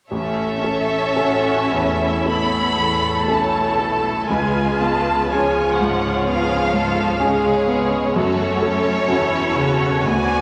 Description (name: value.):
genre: classical.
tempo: 52-65 BPM.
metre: 4/4.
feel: rubato.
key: A major.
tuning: A4 = 440 Hz.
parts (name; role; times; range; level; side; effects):
clear grand piano; melody; 0.1-10.4 s; A1 to A4; -24 LUFS; equal; none.
rich chamber violin section; melody; 0.1-10.4 s; C#5 to B5; -25 LUFS; equal; none.
rich studio violin section; second line; 0.1-10.4 s; F#4 to D5; -28 LUFS; equal; none.
warm studio viola section; accompaniment; 0.1-10.4 s; E#3 to F#4; -25 LUFS; equal; none.
rich chamber cello section; bass; 0.1-10.4 s; D2 to C#3; -32 LUFS; equal; none.
rich studio double bass section; bass; 0.1-10.4 s; E1 to D2; -35 LUFS; equal; none.
room: wet concert hall reverb, RT60 2.1 s.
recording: none.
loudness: -19 LUFS.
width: mono.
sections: 0.1-10.4 A section.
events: none.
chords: 0.1 A; 4.3 C#7; 8.2 F#m.